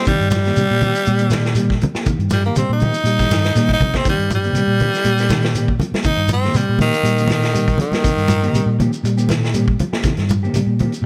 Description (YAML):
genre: afrobeat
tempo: 120 BPM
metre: 4/4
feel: swing 54% on 16ths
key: C minor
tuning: A4 = 442 Hz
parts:
  - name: raspy tenor saxophone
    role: melody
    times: 0.0-8.8 s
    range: Eb3 to Eb4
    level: -22 LUFS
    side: equal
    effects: none
  - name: semi-hollow electric guitar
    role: arpeggios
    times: 0.0-11.0 s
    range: Eb3 to G3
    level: -26 LUFS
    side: equal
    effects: none
  - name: mellow electric guitar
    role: stabs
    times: 0.0-11.0 s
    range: Eb3 to G4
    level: -28 LUFS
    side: equal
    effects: spring reverb
  - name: shekere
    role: percussion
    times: 0.0-11.0 s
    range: none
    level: -28 LUFS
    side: equal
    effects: none
  - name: hollow-body short-scale fingered electric bass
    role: bass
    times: 0.1-11.1 s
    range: G2 to C3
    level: -21 LUFS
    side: equal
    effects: none
  - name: vintage drum kit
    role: drums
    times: 0.1-11.0 s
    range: hi-hat, kick drum, snare drum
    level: -26 LUFS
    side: equal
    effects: none
  - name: congas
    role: percussion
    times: 0.3-10.9 s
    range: none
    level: -24 LUFS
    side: equal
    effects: none
room: light reverb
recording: none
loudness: -17 LUFS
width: mono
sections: 0.0-11.1 A section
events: tenor saxophone solo 0.0-11.1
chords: 0.0 Cm7